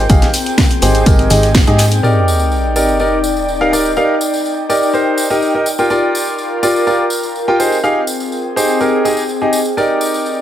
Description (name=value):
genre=piano house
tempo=124 BPM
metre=4/4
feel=straight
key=Eb major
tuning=A4 = 442 Hz
part: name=plucky analog bass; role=bass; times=0.0-2.0 s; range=Ab1 to Ab2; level=-13 LUFS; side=equal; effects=tube saturation, sidechain pumping
part: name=airy breathy pad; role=texture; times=0.0-10.4 s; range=C4 to G5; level=-18 LUFS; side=left 2 dB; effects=chorus, sidechain pumping
part: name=clear concert grand piano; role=riff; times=0.1-10.4 s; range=Eb4 to G5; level=-15 LUFS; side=right 1 dB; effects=sidechain pumping, low-pass filter, dub echo
part: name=electronic kick drum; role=drums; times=0.1-1.6 s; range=none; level=-12 LUFS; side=equal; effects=studio reverb
part: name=garage drum kit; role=drums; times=0.1-2.0 s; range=hi-hat, shaker, snare drum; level=-18 LUFS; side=equal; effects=low-pass filter on hats, studio reverb, low-pass filter on perc, low-pass filter on snare
part: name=vintage brush drum kit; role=drums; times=0.1-1.9 s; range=hi-hat, snare drum, tambourine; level=-27 LUFS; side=equal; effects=none
part: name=tambourine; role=percussion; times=0.1-10.4 s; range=none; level=-25 LUFS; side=equal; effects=none
part: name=sub drop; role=sound effects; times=2.0-4.0 s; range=none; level=-18 LUFS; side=equal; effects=none
room=moderate plate reverb, RT60 2.2 s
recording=none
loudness=-11 LUFS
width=side -11 dB against mid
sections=0.0-2.0 A section; 2.0-10.4 B section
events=band accent 1.5; impact 2.0-4.0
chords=0.0 Abmaj7; 2.0 Ebmaj7; 5.7 Gm7; 7.6 Abmaj7; 9.8 Ebmaj7